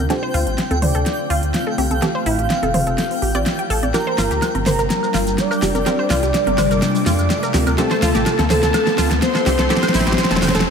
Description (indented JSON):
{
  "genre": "progressive house",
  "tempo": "125 BPM",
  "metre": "4/4",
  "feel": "straight",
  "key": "unclear",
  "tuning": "A4 = 436 Hz",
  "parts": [
    { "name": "evolving wavetable pad", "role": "sustained chords", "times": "0.0-10.7 s", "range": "C3 to E5", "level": "-25 LUFS", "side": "equal", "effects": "ensemble chorus, built-in reverb, phaser" },
    { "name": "analog pluck", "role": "arpeggios", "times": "0.0-10.7 s", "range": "E4 to G5", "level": "-25 LUFS", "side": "equal", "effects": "chorus, vintage 12-bit sampler grit, digital delay" },
    { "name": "wide unison pluck", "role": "stabs", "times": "0.0-10.7 s", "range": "E3 to C5", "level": "-26 LUFS", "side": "right 2 dB", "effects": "digital delay" },
    { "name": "dark detuned saw bass", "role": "bass", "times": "0.0-10.6 s", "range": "E1 to F2", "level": "-22 LUFS", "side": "equal", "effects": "none" },
    { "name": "riser", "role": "sound effects", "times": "0.2-10.7 s", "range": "none", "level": "-27 LUFS", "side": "equal", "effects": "none" },
    { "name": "twinkling granular texture", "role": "texture", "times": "0.0-10.7 s", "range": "G5", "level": "-31 LUFS", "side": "equal", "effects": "built-in reverb" },
    { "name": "soft octave-layered synth lead", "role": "melody", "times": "0.1-10.7 s", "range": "A4 to F5", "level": "-23 LUFS", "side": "left 1 dB", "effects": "chorus, phaser, tape echo" },
    { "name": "soft supersaw", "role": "second line", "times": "0.1-10.7 s", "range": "A5 to F6", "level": "-29 LUFS", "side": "equal", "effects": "phaser, low-pass filter, digital delay" },
    { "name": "pop drum kit", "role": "drums", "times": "0.1-10.7 s", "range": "hi-hat, shaker, snare drum", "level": "-22 LUFS", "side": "equal", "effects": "none" },
    { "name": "electronic congas, toms and woodblock", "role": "percussion", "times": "0.7-10.5 s", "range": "none", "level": "-25 LUFS", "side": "right 2 dB", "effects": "none" }
  ],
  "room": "moderate lush hall reverb, RT60 1.7 s, digital ambience",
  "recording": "none",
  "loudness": "-15 LUFS",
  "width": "side -6 dB against mid",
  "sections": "0.0-10.7 A section",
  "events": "build-up 0.0-10.7; drum fill 0.0-10.7; filter sweep on synth arpeggio sound 0.0-10.7; filter sweep on synth pluck 0.0-10.7; filter sweep on ambient pad 0.0-10.7; filter sweep on soft synth lead 0.0-10.7; filter sweep on supersaw synth 0.0-10.7; riser 0.2-10.7",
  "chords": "0.1 Dm7; 2.0 Am7; 3.9 Gm7; 5.9 C7sus4; 7.8 Dm7; 9.7 Am7"
}